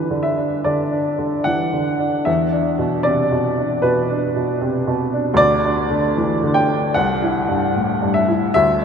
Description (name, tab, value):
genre	classical, romantic character piece for solo piano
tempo	76 BPM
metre	4/4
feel	rubato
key	G major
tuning	A4 = 440 Hz
part	clear baby grand piano	solo	0.0-8.8 s	C2 to G5	-16 LUFS	equal	none
room	wet huge ambient reverb, RT60 6.9 s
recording	in a vast, echoing space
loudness	-16 LUFS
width	side -7 dB against mid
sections	0.0-8.8 A section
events	none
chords	0.0 G; 2.3 E5; 5.4 Dsus24; 7.0 C